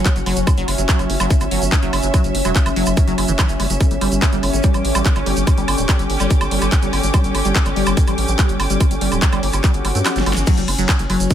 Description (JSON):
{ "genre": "psychedelic trance", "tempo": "144 BPM", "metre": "4/4", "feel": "straight", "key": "unclear", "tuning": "A4 = 439 Hz", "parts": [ { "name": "bubbling stepped-filter texture", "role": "sustained chords", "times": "0.0-11.3 s", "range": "C#4", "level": "-24 LUFS", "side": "equal", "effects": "chorus, built-in reverb, sidechain pumping" }, { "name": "liquid acid bass", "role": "riff", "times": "0.0-11.3 s", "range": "E3 to G4", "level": "-23 LUFS", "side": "moving between left 4 dB and right 6 dB", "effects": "phaser, auto-pan, sidechain pumping, digital delay" }, { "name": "dark studio string section", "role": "texture", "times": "0.0-11.3 s", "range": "D3 to D6", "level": "-27 LUFS", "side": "equal", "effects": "sidechain pumping" }, { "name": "big-room dance drum kit", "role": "drums", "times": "0.1-11.3 s", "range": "crash cymbal, handclaps, hi-hat, snare drum, woodblock", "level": "-23 LUFS", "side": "right 1 dB", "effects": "overdrive" }, { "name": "electronic kick drum", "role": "drums", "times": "0.1-11.3 s", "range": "none", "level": "-15 LUFS", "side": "equal", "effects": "none" }, { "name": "tube shaker", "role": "percussion", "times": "0.1-11.3 s", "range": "none", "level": "-30 LUFS", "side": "right 3 dB", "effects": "none" }, { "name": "round analog bass", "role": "bass", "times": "0.2-11.3 s", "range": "D1 to G2", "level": "-21 LUFS", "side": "equal", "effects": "none" }, { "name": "swell", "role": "sound effects", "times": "9.8-10.5 s", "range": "none", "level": "-29 LUFS", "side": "right 2 dB", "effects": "none" } ], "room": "little or no reverb", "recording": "none", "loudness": "-14 LUFS", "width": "side -10 dB against mid", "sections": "0.0-10.5 A section", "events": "swell 9.8-10.5; kick drops out 10.1-10.5; drum fill 10.1-10.5; band accent 10.3", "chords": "0.0 F#5; 3.8 G5; 10.5 F#5" }